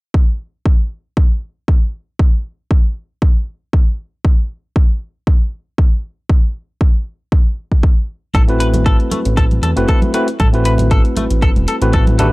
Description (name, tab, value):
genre	nu-disco, nu disco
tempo	117 BPM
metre	4/4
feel	swing 54% on 16ths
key	A dorian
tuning	A4 = 442 Hz
part	electronic kick drum	drums	0.1-12.0 s	none	-12 LUFS	equal	none
part	direct-recorded clean electric guitar	riff	8.3-12.3 s	A3 to B4	-23 LUFS	left 2 dB	lush chorus, tape echo
part	fat analog bass	bass	8.3-12.3 s	E1 to E2	-15 LUFS	equal	none
part	electronic hi-hat	drums	8.3-12.3 s	none	-29 LUFS	left 2 dB	none
part	congas	percussion	8.3-12.3 s	none	-24 LUFS	right 1 dB	none
part	tine electric piano	accompaniment	8.5-12.3 s	A3 to B4	-18 LUFS	equal	sidechain pumping, tape echo
room	digital ambience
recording	dry, gritty hardware recording, cassette tape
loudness	-13 LUFS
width	side -22 dB against mid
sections	0.1-12.3 A section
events	none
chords	0.1 N.C.; 8.3 Am69